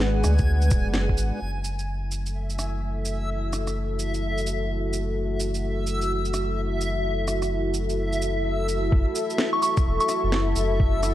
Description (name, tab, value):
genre	future garage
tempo	128 BPM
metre	4/4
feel	swing 62% on 16ths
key	F# minor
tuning	A4 = 440 Hz
part	dark analog pad	sustained chords	0.0-11.1 s	G#3 to F#5	-29 LUFS	equal	chorus, sidechain pumping
part	soft dub sub bass	bass	0.0-11.1 s	D1 to D2	-26 LUFS	equal	tube saturation, sidechain pumping
part	electronic snare drum, rim click and shaker	drums	0.0-11.1 s	none	-30 LUFS	right 1 dB	small room reverb
part	backwards swelling texture	texture	0.1-11.1 s	E5 to G#5	-32 LUFS	left 2 dB	built-in reverb
part	electronic kick drum	drums	0.4-1.2, 8.9-10.9 s	none	-22 LUFS	equal	small room reverb
part	soft synth bell	melody	9.5-10.2 s	C#6	-26 LUFS	equal	chorus, tape echo
room	light reverb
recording	none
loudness	-22 LUFS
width	side -13 dB against mid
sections	0.0-1.4 A section; 1.4-8.9 B section; 8.9-11.1 C section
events	filter sweep on analog synth pad 1.4-8.9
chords	0.0 G#m7b5; 1.4 F#m7